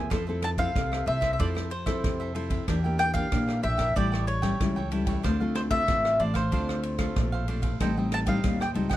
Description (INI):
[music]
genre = samba and choro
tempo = 94 BPM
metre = 4/4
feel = straight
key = F major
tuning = A4 = 440 Hz
[part]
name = cavaquinho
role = accompaniment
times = 0.0-9.0 s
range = D4 to G5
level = -37 LUFS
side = right 8 dB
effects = none
[part]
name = nylon-string guitar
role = accompaniment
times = 0.0-9.0 s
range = A2 to A4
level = -31 LUFS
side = left 2 dB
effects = none
[part]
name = upright bass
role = bass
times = 0.0-9.0 s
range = A1 to Bb2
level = -30 LUFS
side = equal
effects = none
[part]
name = swinging big-band drum kit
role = drums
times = 0.1-9.0 s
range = kick drum, ride cymbal, rim click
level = -31 LUFS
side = equal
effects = none
[part]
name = mandolin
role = melody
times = 0.4-9.0 s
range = C5 to A5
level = -28 LUFS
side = left 1 dB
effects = none
[sound]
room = little or no reverb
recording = none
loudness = -24 LUFS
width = side -14 dB against mid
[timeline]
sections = 0.1-9.0 A section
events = none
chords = 0.1 Fmaj7; 2.7 Em7b5; 4.0 A7; 5.2 Dm7; 7.8 Am7b5